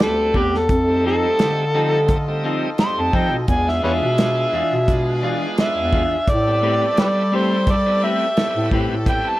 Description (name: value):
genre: straight-eighth soul blues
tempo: 86 BPM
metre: 4/4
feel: swing 55% on 16ths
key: A minor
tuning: A4 = 440 Hz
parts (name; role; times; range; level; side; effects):
- overdriven harmonica; melody; 0.0-9.4 s; G4 to C6; -20 LUFS; equal; none
- bright tonewheel organ; accompaniment; 0.0-9.4 s; G3 to Eb5; -28 LUFS; right 3 dB; slow rotary speaker, overdrive
- mellow bass clarinet; bass; 0.0-9.2 s; D2 to G3; -22 LUFS; equal; none
- warm soul drum kit; drums; 0.0-9.2 s; hi-hat, kick drum, snare drum; -20 LUFS; equal; none
- clean electric guitar; stabs; 0.3-8.9 s; E3 to B4; -25 LUFS; left 2 dB; vibrato effect
- brilliant horn section; sustained chords; 0.7-9.4 s; G#3 to Eb5; -32 LUFS; left 1 dB; none
room: light reverb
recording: none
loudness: -16 LUFS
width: side -16 dB against mid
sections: 0.0-9.4 A section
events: harmonica solo 0.0-9.4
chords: 0.0 Am9; 0.7 F7; 3.5 E7b9; 6.3 Am9